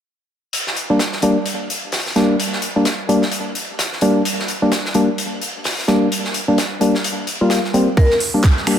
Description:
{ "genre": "bass house", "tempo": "129 BPM", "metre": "4/4", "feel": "swing 59% on 16ths", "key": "G minor", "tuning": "A4 = 440 Hz", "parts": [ { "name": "oversized low-tuned drum kit", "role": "drums", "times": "0.5-8.8 s", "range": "hi-hat, snare drum", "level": "-22 LUFS", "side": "left 1 dB", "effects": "high-pass filter on hats, high-pass filter on snare, high-pass filter on room" }, { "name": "percussive organ stab", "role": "stabs", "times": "0.9-8.8 s", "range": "G3 to F4", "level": "-17 LUFS", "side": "equal", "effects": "chorus, sidechain pumping, digital delay" }, { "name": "vibraphone with medium mallets", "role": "melody", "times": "8.0-8.1 s", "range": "Bb4", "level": "-20 LUFS", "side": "left 1 dB", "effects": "digital delay" }, { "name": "electronic kick drum", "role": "drums", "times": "8.0-8.5 s", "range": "none", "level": "-14 LUFS", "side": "right 1 dB", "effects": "none" }, { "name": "garage drum kit", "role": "drums", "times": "8.2-8.8 s", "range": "finger snaps, handclaps, hi-hat", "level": "-20 LUFS", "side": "right 2 dB", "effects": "none" } ], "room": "moderate digital room reverb, RT60 1.0 s, studio reverb", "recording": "none", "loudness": "-16 LUFS", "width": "side -9 dB against mid", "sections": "0.5-8.8 A section", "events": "none", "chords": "0.5 Gm" }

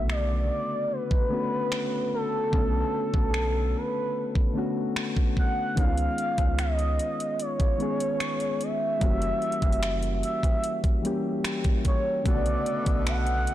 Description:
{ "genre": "contemporary R&B", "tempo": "74 BPM", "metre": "4/4", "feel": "straight", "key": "B minor", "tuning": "A4 = 440 Hz", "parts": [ { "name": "gliding portamento lead", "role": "melody", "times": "0.0-13.5 s", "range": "A4 to F#5", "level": "-29 LUFS", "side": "right 1 dB", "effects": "chorus" }, { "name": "soft electric-piano-like synth keys", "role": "accompaniment", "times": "0.0-13.5 s", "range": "C#3 to A4", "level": "-30 LUFS", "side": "left 2 dB", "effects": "chorus" }, { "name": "warm sub bass", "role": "bass", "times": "0.0-13.5 s", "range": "F#1 to C#2", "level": "-28 LUFS", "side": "equal", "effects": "none" }, { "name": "trap drum kit", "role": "drums", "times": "0.1-13.5 s", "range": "finger snaps, hi-hat, kick drum", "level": "-27 LUFS", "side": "equal", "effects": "soft clipping on snare" }, { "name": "hand-pumped harmonium", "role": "sustained chords", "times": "12.3-13.5 s", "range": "B2 to B3", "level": "-35 LUFS", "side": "equal", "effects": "none" } ], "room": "little or no reverb", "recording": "blown-out, overdriven recording, overdrive", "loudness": "-24 LUFS", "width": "side -13 dB against mid", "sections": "0.0-13.5 A section", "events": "none", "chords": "0.0 Bm7; 5.8 C#7; 9.0 F#7b9; 12.3 Bm7" }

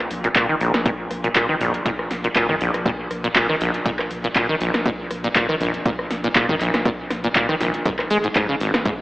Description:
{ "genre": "acid house", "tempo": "120 BPM", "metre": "4/4", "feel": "swing 54% on 16ths", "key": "unclear", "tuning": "A4 = 443 Hz", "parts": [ { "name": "warm sub bass", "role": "bass", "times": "0.1-8.9 s", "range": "Ab1 to Bb1", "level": "-34 LUFS", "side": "equal", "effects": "sidechain pumping" }, { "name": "electro analog drum machine", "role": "drums", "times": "0.1-9.0 s", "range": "handclaps, hi-hat, rim click, snare drum, toms", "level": "-22 LUFS", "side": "equal", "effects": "none" }, { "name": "acid bass, saw", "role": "riff", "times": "0.2-8.9 s", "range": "Ab1 to Ab3", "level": "-21 LUFS", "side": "equal", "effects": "tube saturation, wide subtle chorus, diffuse ambient delay" }, { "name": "electronic kick drum", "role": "drums", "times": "0.4-9.0 s", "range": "none", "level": "-25 LUFS", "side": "equal", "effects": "none" } ], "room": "wet plate reverb, RT60 2.1 s", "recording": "dreamy mix soaked in reverb, AM radio sound", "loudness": "-18 LUFS", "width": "side -18 dB against mid", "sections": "0.0-9.0 A section", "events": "none", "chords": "none" }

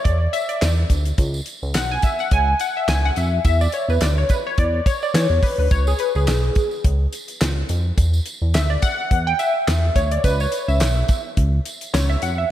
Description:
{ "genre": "early-eighties boogie funk", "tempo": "106 BPM", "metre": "4/4", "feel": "swing 56% on 16ths", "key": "C# minor", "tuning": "A4 = 442 Hz", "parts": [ { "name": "funky polysynth comp", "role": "accompaniment", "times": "0.0-12.5 s", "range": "G#4 to G#5", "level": "-22 LUFS", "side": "left 1 dB", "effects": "chorus" }, { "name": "chorused synth bass", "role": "bass", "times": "0.1-12.4 s", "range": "B1 to E3", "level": "-19 LUFS", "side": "equal", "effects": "none" }, { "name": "damped 70s drum kit", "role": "drums", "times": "0.1-12.4 s", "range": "handclaps, hi-hat, kick drum, snare drum", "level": "-21 LUFS", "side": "equal", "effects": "none" }, { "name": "tambourine", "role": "percussion", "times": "0.3-12.4 s", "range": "none", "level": "-35 LUFS", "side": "right 3 dB", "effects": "none" } ], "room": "moderate lush hall reverb, RT60 2.2 s", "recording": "dreamy mix soaked in reverb", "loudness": "-17 LUFS", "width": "side -12 dB against mid", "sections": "0.0-12.5 A section", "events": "analog polysynth solo 0.0-12.5", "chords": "0.0 Dsus2; 1.2 E69/B; 3.5 Bmadd11/D; 5.7 C#5; 8.0 Dadd9; 10.2 C#m7" }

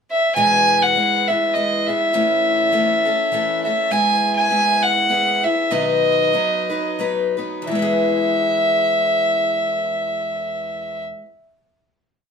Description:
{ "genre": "acoustic folk duo or small band", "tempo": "86-102 BPM", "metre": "3/4", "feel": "swing 56% on 8ths", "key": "E major", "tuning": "A4 = 441 Hz", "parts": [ { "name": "warm fiddle", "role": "melody", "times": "0.1-11.0 s", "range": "D#5 to G#5", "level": "-17 LUFS", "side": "right 1 dB", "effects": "none" }, { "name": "picked steel-string acoustic guitar", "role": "accompaniment", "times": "0.4-11.3 s", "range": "E2 to B4", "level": "-22 LUFS", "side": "left 3 dB", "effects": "none" } ], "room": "wet studio reverb, RT60 0.5 s", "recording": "band playing live in one room", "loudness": "-16 LUFS", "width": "side -6 dB against mid", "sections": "0.0-0.4 pickup bar; 0.4-7.7 interlude; 7.7-11.9 final chord", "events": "slowing down 3.9-7.7", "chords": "0.4 E; 2.1 A; 3.9 E/G#; 5.7 B; 7.7 E" }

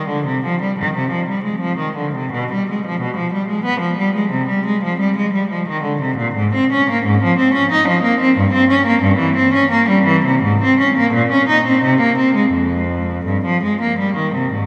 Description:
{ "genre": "classical, baroque-style suite movement for unaccompanied cello", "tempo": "88 BPM", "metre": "3/4", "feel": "uneven beats, rubato", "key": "C minor, F minor from 6.3 s", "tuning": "A4 = 440 Hz", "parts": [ { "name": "rich cello", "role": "solo", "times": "0.0-14.7 s", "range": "F2 to Eb4", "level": "-16 LUFS", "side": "equal", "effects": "none" } ], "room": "wet church reverb, RT60 3.3 s", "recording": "none", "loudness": "-16 LUFS", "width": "mono", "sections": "0.0-14.7 A section", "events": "none", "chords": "none" }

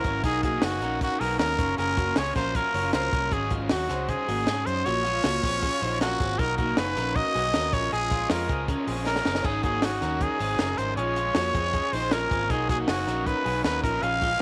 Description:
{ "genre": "jangly indie pop", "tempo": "157 BPM", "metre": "4/4", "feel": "straight", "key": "unclear", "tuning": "A4 = 440 Hz", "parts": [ { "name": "growling trumpet", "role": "melody", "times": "0.0-14.4 s", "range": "Gb4 to F5", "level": "-29 LUFS", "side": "equal", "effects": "tape echo" }, { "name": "vibraphone with medium hard mallets", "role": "second line", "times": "0.0-14.4 s", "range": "Db4 to Ab4", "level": "-38 LUFS", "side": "equal", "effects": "none" }, { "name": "raw garage guitar", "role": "accompaniment", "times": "0.0-14.4 s", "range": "Gb2 to Ab4", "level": "-38 LUFS", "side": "equal", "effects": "overdrive" }, { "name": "electric guitar through a small old amp", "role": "arpeggios", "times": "0.0-14.4 s", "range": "Ab3 to Db5", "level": "-36 LUFS", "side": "equal", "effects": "none" }, { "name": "vintage muted fingered electric bass", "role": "bass", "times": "0.0-14.3 s", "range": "Gb1 to Ab2", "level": "-35 LUFS", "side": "equal", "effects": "none" }, { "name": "compact cocktail drum kit", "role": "drums", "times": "0.0-14.3 s", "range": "crash cymbal, hi-hat, kick drum, snare drum", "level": "-31 LUFS", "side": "equal", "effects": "none" } ], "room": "light reverb", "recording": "none", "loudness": "-26 LUFS", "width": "mono", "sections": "0.0-14.4 A section", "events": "drum fill 9.1-9.4", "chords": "0.2 Cbmaj7; 1.6 Gbmaj7; 3.3 Ab7sus4; 6.4 Cbmaj7; 7.7 Bbm7; 9.4 Ab7sus4; 11.0 Bbm7; 12.5 Cbmaj7; 13.8 Bbm7" }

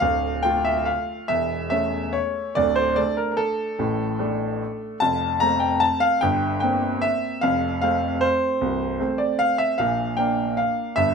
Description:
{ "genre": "classical, piano waltz", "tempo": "138-161 BPM", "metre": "3/4", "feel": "rubato", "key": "D minor", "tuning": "A4 = 440 Hz", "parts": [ { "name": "clear grand piano", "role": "solo", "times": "0.0-11.1 s", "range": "C1 to Bb5", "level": "-20 LUFS", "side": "equal", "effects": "none" } ], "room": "moderate stone room reverb, RT60 1.4 s", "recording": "close, detailed microphones", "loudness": "-20 LUFS", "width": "side -6 dB against mid", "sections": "0.0-11.1 A section", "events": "none", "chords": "0.0 Dm; 1.3 A/E; 2.6 D5; 5.0 F; 6.2 C7/G; 7.4 F; 9.8 Bb" }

